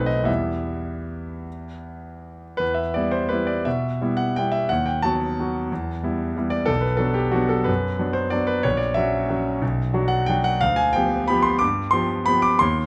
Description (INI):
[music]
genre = classical, piano waltz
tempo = 143-198 BPM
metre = 3/4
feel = rubato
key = E minor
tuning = A4 = 442 Hz
[part]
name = clear concert grand piano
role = solo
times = 0.0-12.9 s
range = A#1 to D6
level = -23 LUFS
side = equal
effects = none
[sound]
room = moderate recital hall reverb, RT60 1.5 s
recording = close, detailed microphones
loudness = -22 LUFS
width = mono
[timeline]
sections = 0.0-2.6 A section; 2.6-12.9 A section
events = none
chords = 0.3 Em; 4.7 B7/D#; 5.7 Em; 6.7 Bm; 8.6 F#7/A#; 9.6 Bm; 10.6 G7/D